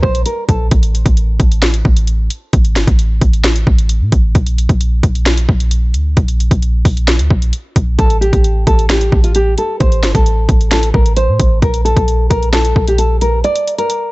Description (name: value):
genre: hip hop, trap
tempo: 132 BPM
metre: 4/4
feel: half-time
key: A phrygian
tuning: A4 = 440 Hz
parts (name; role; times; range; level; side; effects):
- nylon-string guitar; melody; 0.0-0.7, 8.0-14.1 s; F4 to D5; -16 LUFS; equal; none
- clean 808-style bass; bass; 0.0-13.4 s; G1 to A2; -13 LUFS; equal; none
- trap drum kit; drums; 0.0-14.0 s; hi-hat, kick drum, snare drum; -13 LUFS; equal; overdrive
room: digital ambience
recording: nothing above 8.0 kHz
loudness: -10 LUFS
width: side -21 dB against mid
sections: 0.0-14.1 A section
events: break 13.4-14.1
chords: 0.0 N.C.; 8.0 Am; 11.6 Bbmaj7(no3)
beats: 0.26 | 0.71 1.17 1.62 2.08 | 2.53 2.99 3.44 3.90 | 4.35 4.81 5.26 5.71 | 6.17 6.62 7.08 7.53 | 7.99 8.44 8.90 9.35 | 9.81 10.26 10.71 11.17 | 11.62 12.08 12.53 12.99 | 13.44 13.90